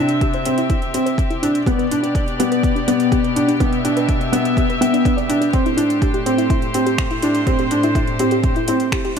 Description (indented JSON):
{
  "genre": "piano and strings electronica",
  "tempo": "124 BPM",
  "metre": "4/4",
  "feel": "straight",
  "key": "unclear",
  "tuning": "A4 = 440 Hz",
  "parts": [
    { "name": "warm studio string section", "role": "sustained chords", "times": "0.0-9.2 s", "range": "A2 to E5", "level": "-23 LUFS", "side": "left 1 dB", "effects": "none" },
    { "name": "soft round pluck", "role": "arpeggios", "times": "0.0-9.1 s", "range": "D4 to G5", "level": "-25 LUFS", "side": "left 2 dB", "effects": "chorus, sidechain pumping, tape echo" },
    { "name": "felt-muted upright piano", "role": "riff", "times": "0.0-9.2 s", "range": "B3 to D4", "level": "-18 LUFS", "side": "equal", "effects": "tape echo" },
    { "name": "deep house drum kit", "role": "drums", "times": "0.1-9.2 s", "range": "finger snaps, hi-hat", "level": "-29 LUFS", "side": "right 2 dB", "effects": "overdrive" },
    { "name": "electronic kick drum", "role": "drums", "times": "0.2-9.0 s", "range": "none", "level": "-20 LUFS", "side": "equal", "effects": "overdrive" }
  ],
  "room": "moderate huge ambient reverb, RT60 4.7 s",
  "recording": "none",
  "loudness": "-15 LUFS",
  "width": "side -6 dB against mid",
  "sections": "0.0-9.2 A section",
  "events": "build-up 0.0-9.2; filter sweep on synth arpeggio sound 0.0-9.2",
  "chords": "0.0 C; 1.7 G/B; 5.5 Am7"
}